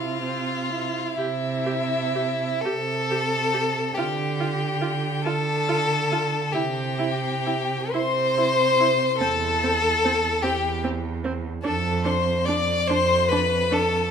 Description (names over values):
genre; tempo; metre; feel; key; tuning
classical, slow romantic movement for string quartet; 39-50 BPM (dotted quarters); 6/8; rubato; C major; A4 = 440 Hz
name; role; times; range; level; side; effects
rich violin; melody; 0.0-14.1 s; E5 to D6; -30 LUFS; left 8 dB; none
clear violin; second line; 0.0-14.1 s; E4 to D5; -23 LUFS; left 2 dB; none
rich viola; accompaniment; 0.0-13.8 s; C4 to G4; -31 LUFS; right 4 dB; none
rich cello; bass; 0.0-14.0 s; E2 to D3; -28 LUFS; right 4 dB; none
room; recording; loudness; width
moderate recital hall reverb, RT60 1.6 s; minimal, uncompressed stereo recording; -21 LUFS; side -7 dB against mid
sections
0.0-1.2 A section; 1.2-14.1 A section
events
none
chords
0.0 C; 4.0 G5/D; 6.5 C; 9.2 C/E; 11.6 Dm/F